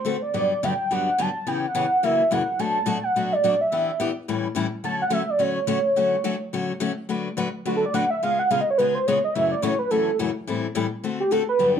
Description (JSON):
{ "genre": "jazz", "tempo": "213 BPM", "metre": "4/4", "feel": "swing 58% on 8ths", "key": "D major", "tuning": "A4 = 439 Hz", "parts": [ { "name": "warm velvety synth lead", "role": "melody", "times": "0.0-11.8 s", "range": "F#4 to A5", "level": "-21 LUFS", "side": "right 2 dB", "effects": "chorus" }, { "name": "picked steel-string acoustic guitar", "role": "accompaniment", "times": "0.0-11.8 s", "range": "F#2 to B4", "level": "-26 LUFS", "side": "left 5 dB", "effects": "none" } ], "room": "wet club reverb, RT60 0.7 s", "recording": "dark, warm production", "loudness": "-21 LUFS", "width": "side -8 dB against mid", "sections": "0.0-7.1 A section; 7.1-11.8 B section", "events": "soft synth lead solo 7.1-11.8", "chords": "0.3 Gmaj7; 1.5 C#m7b5; 2.0 F#7; 2.6 Bm7; 3.7 Em7; 4.3 A7; 4.8 Dmaj7; 7.1 D6; 8.2 C#7; 9.3 F#m7; 10.5 Am7; 11.0 D7", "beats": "0.05 | 0.33 0.62 0.90 1.18 | 1.46 1.74 2.02 2.30 | 2.58 2.87 3.15 3.43 | 3.71 3.99 4.27 4.55 | 4.83 5.12 5.40 5.68 | 5.96 6.24 6.52 6.80 | 7.09 7.37 7.65 7.93 | 8.21 8.50 8.78 9.06 | 9.34 9.62 9.91 10.19 | 10.47 10.75 11.03 11.31 | 11.60" }